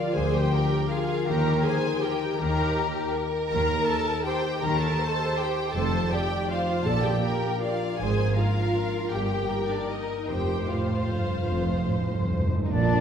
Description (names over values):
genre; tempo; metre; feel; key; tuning
classical, orchestral ballroom waltz; 139-173 BPM; 3/4; rubato; Eb major; A4 = 440 Hz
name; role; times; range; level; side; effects
clear symphonic violin section; melody; 0.0-12.3 s; D5 to Bb5; -32 LUFS; left 3 dB; none
warm symphonic violin section; second line; 0.0-13.0 s; D4 to D5; -32 LUFS; left 1 dB; none
rich symphonic viola section; accompaniment; 0.0-12.3 s; D4 to Bb4; -31 LUFS; right 2 dB; none
concert harp; arpeggios; 0.0-13.0 s; F2 to Eb5; -30 LUFS; left 4 dB; none
dark chamber cello section; bass; 0.1-13.0 s; F2 to Eb3; -31 LUFS; right 2 dB; none
rich symphonic double bass section; bass; 0.2-13.0 s; F1 to Eb2; -31 LUFS; right 2 dB; none
timpani; percussion; 6.9-7.4, 10.3-12.7 s; F2 to Bb2; -31 LUFS; equal; none
silver concert flute; second line; 12.7-13.0 s; D5; -29 LUFS; left 1 dB; none
mellow French horn section; sustained chords; 12.7-13.0 s; Bb3 to Bb4; -34 LUFS; left 5 dB; none
mellow trombone section; sustained chords; 12.7-13.0 s; Bb2 to F3; -29 LUFS; right 1 dB; none
room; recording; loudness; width
wet recital hall reverb, RT60 1.8 s; recorded in a church or concert hall; -23 LUFS; side -8 dB against mid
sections
0.0-12.7 A section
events
timpani fill 10.3-12.7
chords
0.0 Bb7/D; 1.3 Eb; 3.5 Cm7/Eb; 5.7 F7; 6.9 Bb; 8.0 Bb7/Ab; 9.1 Eb/G; 10.3 F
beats
| 0.15 0.52 0.91 | 1.27 1.64 2.03 | 2.40 2.76 3.15 | 3.51 3.88 4.26 | 4.63 5.00 5.38 | 5.75 6.11 6.50 | 6.86 7.24 7.62 | 7.99 8.36 8.76 | 9.13 9.50 9.90 | 10.29 10.69 11.12 | 11.52 11.91 12.33 | 12.71